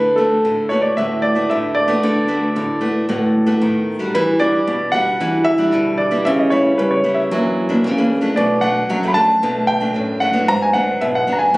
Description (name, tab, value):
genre	samba and choro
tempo	114 BPM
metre	4/4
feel	straight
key	D major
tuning	A4 = 440 Hz
part	warm grand piano	melody	0.0-11.6 s	A4 to B5	-18 LUFS	equal	none
part	nylon-string guitar	accompaniment	0.0-11.6 s	F#2 to F#4	-20 LUFS	equal	none
part	nylon-string guitar	bass	0.0-11.6 s	G#2 to G3	-20 LUFS	equal	none
room	light reverb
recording	recorded on a phone in the room, club reverb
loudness	-14 LUFS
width	side -21 dB against mid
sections	0.0-4.1 A section; 4.1-11.6 B section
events	none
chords	0.0 D6; 4.1 Em9; 6.3 C#m7b5; 7.3 F#7b13; 8.4 Bm7; 10.5 G#m7b5